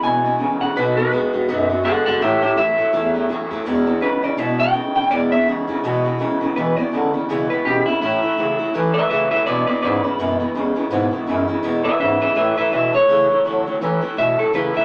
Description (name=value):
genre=rock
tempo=166 BPM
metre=4/4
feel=swing 58% on 8ths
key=E mixolydian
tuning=A4 = 440 Hz
part: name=electric guitar through a small old amp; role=melody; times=0.0-14.8 s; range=E4 to G#5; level=-21 LUFS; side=equal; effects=none
part: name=picked acoustic archtop guitar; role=accompaniment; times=0.0-14.8 s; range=E2 to F#4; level=-28 LUFS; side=equal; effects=none
part: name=electric guitar through a small old amp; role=riff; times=0.0-14.8 s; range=E2 to G#3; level=-26 LUFS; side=equal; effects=harmonic tremolo
part: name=mellow bass clarinet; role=bass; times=0.0-14.8 s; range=E2 to E3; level=-26 LUFS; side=equal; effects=none
room=moderate club reverb, RT60 0.5 s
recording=none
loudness=-19 LUFS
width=mono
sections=0.0-6.6 A section; 6.6-14.8 B section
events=clean electric guitar solo 0.0-6.6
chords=0.0 E; 0.8 B; 2.2 A; 3.7 E; 8.0 A; 9.5 E; 12.4 A